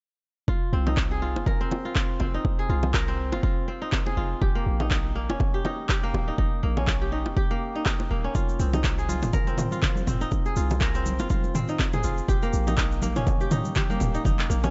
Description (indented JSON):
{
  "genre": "afro house",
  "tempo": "122 BPM",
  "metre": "4/4",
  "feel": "swing 57% on 16ths",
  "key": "F minor",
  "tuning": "A4 = 440 Hz",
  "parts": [
    { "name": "kora", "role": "arpeggios", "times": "0.5-14.7 s", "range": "Bb3 to Bb4", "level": "-32 LUFS", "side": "equal", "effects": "sidechain pumping, dub echo" },
    { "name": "warm 808-style bass", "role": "bass", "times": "0.5-14.7 s", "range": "Eb1 to C2", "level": "-30 LUFS", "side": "equal", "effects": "sidechain pumping" },
    { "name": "electronic kick drum", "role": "drums", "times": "0.5-14.4 s", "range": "none", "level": "-28 LUFS", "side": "equal", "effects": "none" },
    { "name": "bongos", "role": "percussion", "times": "0.9-14.7 s", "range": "none", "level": "-35 LUFS", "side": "equal", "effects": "none" },
    { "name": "deep house drum kit", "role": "drums", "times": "1.0-14.5 s", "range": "handclaps, toms", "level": "-33 LUFS", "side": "equal", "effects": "none" },
    { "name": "egg shaker", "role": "percussion", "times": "8.3-14.7 s", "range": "none", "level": "-45 LUFS", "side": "equal", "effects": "none" },
    { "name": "congas", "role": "percussion", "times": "8.4-14.6 s", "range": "none", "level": "-35 LUFS", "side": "equal", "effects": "none" }
  ],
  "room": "little or no reverb",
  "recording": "nothing above 7.8 kHz",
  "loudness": "-25 LUFS",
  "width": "mono",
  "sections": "0.5-14.7 A section",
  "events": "none",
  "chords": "0.5 Fm7; 4.4 Eb7; 8.4 Fm7; 12.3 Eb7",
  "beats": "| 0.48 0.97 1.47 1.96 | 2.45 2.94 3.43 3.93 | 4.42 4.91 5.40 5.89 | 6.38 6.88 7.37 7.86 | 8.35 8.84 9.34 9.83 | 10.32 10.81 11.30 11.79 | 12.29 12.78 13.27 13.76 | 14.25"
}